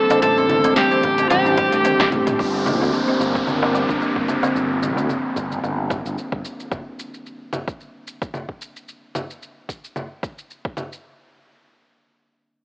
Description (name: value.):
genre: organic downtempo.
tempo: 111 BPM.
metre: 4/4.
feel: swing 55% on 16ths.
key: G dorian.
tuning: A4 = 440 Hz.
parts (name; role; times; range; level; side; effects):
overdriven slide guitar; melody; 0.0-2.1 s; G4 to A4; -18 LUFS; equal; tape echo.
ethereal airy pad; sustained chords; 0.0-4.6 s; E3 to A5; -26 LUFS; equal; ensemble chorus, built-in reverb, sidechain pumping.
kalimba; arpeggios; 0.0-4.5 s; D3 to G4; -23 LUFS; equal; tape echo.
deep house drum kit; drums; 0.1-11.0 s; congas, hi-hat, shaker, snare drum, toms; -26 LUFS; equal; overdrive, small room ambience.
darbuka; percussion; 0.1-6.0 s; none; -28 LUFS; equal; none.
sustaining fretless electric bass; bass; 0.2-6.4 s; E1 to D2; -26 LUFS; equal; none.
electronic kick drum; drums; 1.0-10.7 s; none; -27 LUFS; equal; overdrive, small room ambience.
downlifter; sound effects; 2.4-6.7 s; none; -28 LUFS; equal; none.
room: moderate echo chamber reverb, RT60 2.6 s.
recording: worn, warbling old tape, cassette tape, warbly pitch drift, AM radio sound.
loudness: -17 LUFS.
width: side -33 dB against mid.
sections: 0.0-2.4 A section; 2.4-11.0 B section; 11.0-12.6 C section.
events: drum fill 1.6-2.4; filter sweep on ambient pad 2.4-4.6.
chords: 0.2 Am7; 2.4 Gm7; 6.7 N.C..